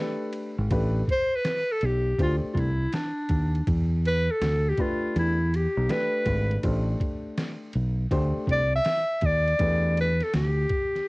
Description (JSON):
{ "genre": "hip hop, jazz-hop", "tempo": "81 BPM", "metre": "4/4", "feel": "swing 66% on 16ths", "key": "A minor", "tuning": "A4 = 441 Hz", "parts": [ { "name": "breathy clarinet", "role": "melody", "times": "0.0-11.1 s", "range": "D4 to E5", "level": "-26 LUFS", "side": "equal", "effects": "none" }, { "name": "dark upright piano", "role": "accompaniment", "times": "0.0-10.1 s", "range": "A3 to C5", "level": "-31 LUFS", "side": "left 1 dB", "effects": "none" }, { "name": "trip hop sampler-style drum kit", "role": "drums", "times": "0.3-11.1 s", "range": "hi-hat, kick drum, ride cymbal, snare drum", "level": "-30 LUFS", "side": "equal", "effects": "cassette tape" }, { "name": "fingered electric bass", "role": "bass", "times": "0.6-10.6 s", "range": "G#1 to E2", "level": "-25 LUFS", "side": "equal", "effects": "none" } ], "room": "little or no reverb", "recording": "home recording on cassette", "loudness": "-23 LUFS", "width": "side -24 dB against mid", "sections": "0.7-11.1 A section", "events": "break 0.0-0.7; clarinet solo 0.7-11.1", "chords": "0.0 Gadd9; 0.7 Asus2; 2.2 D5; 3.7 Em7; 5.2 G69; 6.6 Am9; 8.1 D5; 9.6 Em7" }